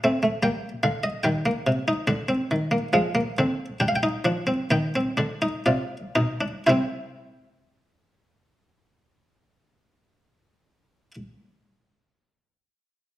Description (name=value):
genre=classical, baroque-style 3-part fugue for harpsichord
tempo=58-76 BPM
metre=3/4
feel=straight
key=unclear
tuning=A4 = 441 Hz
part: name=buff-stop harpsichord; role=solo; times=0.0-11.1 s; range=B2 to G5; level=-22 LUFS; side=equal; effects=none
room=moderate stone room reverb, RT60 1.2 s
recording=none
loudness=-22 LUFS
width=side -15 dB against mid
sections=0.0-6.7 A section; 6.7-9.8 B section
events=slowing down 0.1-6.7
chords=0.5 Gm; 1.3 Eb; 2.9 Fm; 3.8 G7; 6.7 C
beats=0.46 | 1.26 2.09 2.93 | 3.80 4.71 5.66 | 6.66 7.70 8.72